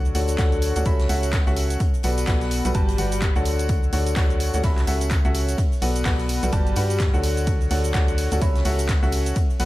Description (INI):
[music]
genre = piano house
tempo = 127 BPM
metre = 4/4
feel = swing 59% on 16ths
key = unclear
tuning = A4 = 440 Hz
[part]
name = clear upright piano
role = riff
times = 0.0-9.7 s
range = D3 to B5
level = -25 LUFS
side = left 1 dB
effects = vintage 12-bit sampler grit, sidechain pumping, analog delay
[part]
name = organ-like FM bass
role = bass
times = 0.0-9.7 s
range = G1 to G2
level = -24 LUFS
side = equal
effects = tube saturation, sidechain pumping
[part]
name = punchy analog drum machine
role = drums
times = 0.1-9.7 s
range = handclaps, hi-hat, ride cymbal, shaker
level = -32 LUFS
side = right 1 dB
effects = none
[part]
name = vintage drum kit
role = drums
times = 0.1-9.7 s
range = hi-hat, snare drum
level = -42 LUFS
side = left 3 dB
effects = none
[part]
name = tambourine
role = percussion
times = 0.1-9.7 s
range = none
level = -38 LUFS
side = equal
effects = none
[part]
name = electronic kick drum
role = drums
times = 0.4-9.5 s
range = none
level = -22 LUFS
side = equal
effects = none
[sound]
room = light reverb, small room reverb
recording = none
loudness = -19 LUFS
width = side -17 dB against mid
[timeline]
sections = 0.0-9.7 A section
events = none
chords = 0.0 Dmaj7; 0.9 F#m7/C#; 1.8 Bm7; 2.7 Gmaj7; 3.5 Dmaj7; 4.6 F#m7/C#; 5.6 Bm7; 6.5 Gmaj7; 7.2 Dmaj7; 8.4 F#m7/C#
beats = 0.39 0.86 1.33 | 1.80 2.28 2.75 3.22 | 3.69 4.17 4.64 5.11 | 5.58 6.05 6.53 7.00 | 7.47 7.95 8.42 8.89 | 9.36